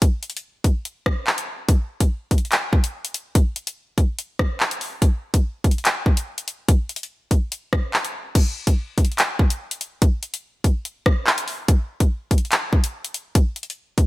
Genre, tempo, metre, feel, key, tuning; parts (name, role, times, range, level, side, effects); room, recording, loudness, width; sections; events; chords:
hip hop; 144 BPM; 4/4; half-time
drill drum kit; drums; 0.0-14.1 s; crash cymbal, handclaps, hi-hat, kick drum, rim click; -18 LUFS; equal
light reverb; -19 LUFS; side -18 dB against mid
0.0-8.4 A section; 8.4-14.1 A section